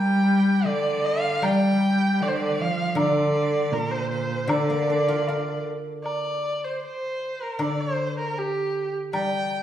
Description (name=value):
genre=chinese traditional, Chinese chamber ensemble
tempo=78 BPM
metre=2/4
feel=rubato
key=D jue mode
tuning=A4 = 441 Hz
part: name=clear erhu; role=melody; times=0.0-9.6 s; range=G4 to G5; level=-26 LUFS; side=right 1 dB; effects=none
part: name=bright cello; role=second line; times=0.0-5.7 s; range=Bb2 to G3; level=-24 LUFS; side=equal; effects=none
part: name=guzheng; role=accompaniment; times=0.0-9.6 s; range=D3 to D5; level=-28 LUFS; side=left 1 dB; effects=none
part: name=woodblock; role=percussion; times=1.4-9.3 s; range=none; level=-34 LUFS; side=equal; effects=none
room=wet recital hall reverb, RT60 1.4 s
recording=heard from further back in the room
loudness=-22 LUFS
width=side -11 dB against mid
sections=0.0-6.0 A section; 6.0-9.6 B section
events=none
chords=none